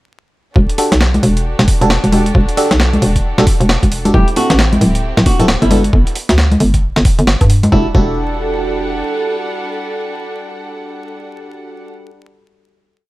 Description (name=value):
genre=UK garage, two-step garage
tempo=134 BPM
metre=4/4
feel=swing 61% on 16ths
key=E minor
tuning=A4 = 440 Hz
part: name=dark studio violin section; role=sustained chords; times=0.6-11.9 s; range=G3 to F#5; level=-25 LUFS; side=equal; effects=sidechain pumping
part: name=hollow knocking FM bass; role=bass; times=0.6-9.0 s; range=D1 to G2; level=-13 LUFS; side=equal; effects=none
part: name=electronic kick drum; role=drums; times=0.6-8.1 s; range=none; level=-13 LUFS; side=equal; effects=none
part: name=breakbeat sampler-style drum kit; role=drums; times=0.7-7.7 s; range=congas, hi-hat, snare drum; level=-16 LUFS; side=equal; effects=none
part: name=FM electric piano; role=stabs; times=0.8-12.1 s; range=B3 to A4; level=-20 LUFS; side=right 1 dB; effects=chorus, phaser, dub echo
part: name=flamenco guitar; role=melody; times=4.1-12.1 s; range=G3 to G4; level=-21 LUFS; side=equal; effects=dub echo
room=little or no reverb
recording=vinyl crackle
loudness=-11 LUFS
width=side -18 dB against mid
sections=0.6-7.7 drop; 7.7-11.3 final chord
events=drop 0.6-7.7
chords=0.6 Em11; 4.1 D9sus4; 5.7 Gmaj9; 7.7 Em11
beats=| 0.56 1.01 1.45 1.90 | 2.35 2.80 3.24 3.69 | 4.14 4.59 5.04 5.48 | 5.93 6.38 6.83 7.27 | 7.72 8.17 8.62 9.06 | 9.51 9.96 10.41 10.86